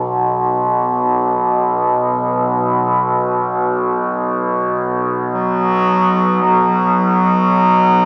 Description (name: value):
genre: dark ambient drone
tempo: free time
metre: none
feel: none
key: unclear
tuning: A4 = 442 Hz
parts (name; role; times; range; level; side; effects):
- overtone-sweeping drone; drone; 0.0-8.1 s; B1 to B2; -14 LUFS; equal; chorus, built-in reverb
- bright bass clarinet; melody; 5.3-8.1 s; F#3; -12 LUFS; equal; tape echo
- deep dark ambient pad; sustained chords; 7.7-8.1 s; none; barely audible; none; none
room: wet cathedral reverb, RT60 6.5 s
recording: small speaker sound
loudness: -13 LUFS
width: side -37 dB against mid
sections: 0.0-8.1 A section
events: none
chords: 0.0 B5